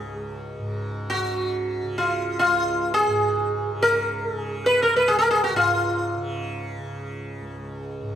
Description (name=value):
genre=indian classical, Hindustani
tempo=free time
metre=none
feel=none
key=Db raga khamaj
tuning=A4 = 439 Hz
part: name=sitar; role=melody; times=0.0-7.1 s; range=F4 to Cb5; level=-21 LUFS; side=equal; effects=none
part: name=tanpura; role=drone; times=0.0-8.2 s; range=Db2 to Db3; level=-31 LUFS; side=equal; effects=none
room=moderate recital hall reverb, RT60 1.4 s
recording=none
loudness=-20 LUFS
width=side -10 dB against mid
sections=0.0-8.2 A section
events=none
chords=none